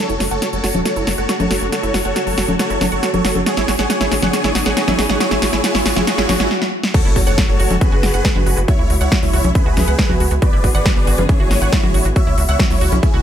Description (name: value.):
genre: uplifting trance.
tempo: 138 BPM.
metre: 4/4.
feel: straight.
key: F# minor.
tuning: A4 = 443 Hz.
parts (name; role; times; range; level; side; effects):
big supersaw lead; melody; 0.0-13.2 s; E4 to E5; -21 LUFS; equal; phaser, sidechain pumping, tape echo.
muted studio string section; sustained chords; 0.0-13.2 s; C#3 to G#4; -27 LUFS; left 2 dB; sidechain pumping.
wide unison pluck; arpeggios; 0.0-13.2 s; F#3 to F#5; -25 LUFS; right 4 dB; sidechain pumping, dub echo.
riser, swell and impact; sound effects; 3.5-8.7 s; none; -27 LUFS; equal; none.
tight sequencer bass; bass; 0.1-13.2 s; E1 to C#2; -20 LUFS; equal; sidechain pumping.
big-room dance drum kit; drums; 0.1-13.1 s; congas, crash cymbal, hi-hat, snare drum; -19 LUFS; equal; overdrive, studio reverb, sidechain pumping on hats, sidechain pumping on perc, sidechain pumping on cymbals.
electronic kick drum; drums; 6.9-13.1 s; none; -16 LUFS; equal; overdrive, studio reverb.
room: light reverb, digital ambience.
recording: none.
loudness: -14 LUFS.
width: side -9 dB against mid.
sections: 0.0-6.9 A section; 6.9-13.2 B section.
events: build-up 0.0-6.9; drum fill 0.0-6.5, 6.5-6.9; filter sweep on synth pluck 0.0-6.9; riser 3.5-6.5; swell 6.1-6.9; stop 6.5-6.9; drop 6.9-13.2; impact 6.9-8.7.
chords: 0.0 F#madd9; 3.5 G#dim; 6.9 F#madd9; 8.7 C#m7; 10.4 G#dim; 12.2 C#m7.